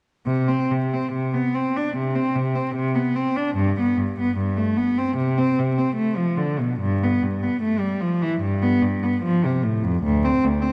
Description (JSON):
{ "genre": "classical, baroque-style suite movement for unaccompanied cello", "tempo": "74 BPM", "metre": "4/4", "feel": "rubato", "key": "unclear", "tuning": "A4 = 440 Hz", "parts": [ { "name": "rich cello", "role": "solo", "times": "0.3-10.7 s", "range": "D2 to D4", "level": "-22 LUFS", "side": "equal", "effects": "none" } ], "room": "wet concert hall reverb, RT60 2.2 s", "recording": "vinyl crackle", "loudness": "-22 LUFS", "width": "mono", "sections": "0.3-10.7 A section", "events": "none", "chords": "none", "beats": "| 0.26 1.12 1.94 2.75 | 3.56 4.37 5.17 5.96 | 6.79 7.62 8.42 9.22 | 10.02" }